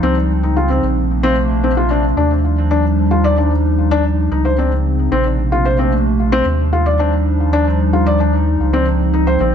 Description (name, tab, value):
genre	IDM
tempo	112 BPM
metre	4/4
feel	straight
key	Eb lydian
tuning	A4 = 439 Hz
part	warbly tape-like pad	sustained chords	0.0-9.5 s	C3 to Eb4	-18 LUFS	equal	chorus, built-in reverb
part	felt-muted upright piano	arpeggios	0.0-9.5 s	C4 to D5	-18 LUFS	left 3 dB	ping-pong delay
part	warm sub bass	bass	0.0-9.5 s	Bb1 to Eb2	-16 LUFS	right 1 dB	none
room	light reverb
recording	none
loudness	-13 LUFS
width	side -8 dB against mid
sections	0.0-9.5 A section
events	none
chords	0.0 Dbmaj9; 0.8 Bbmaj9; 2.2 Ebmaj9; 4.3 Dbmaj9; 5.1 Bbmaj9; 6.5 Ebmaj9; 8.6 Dbmaj9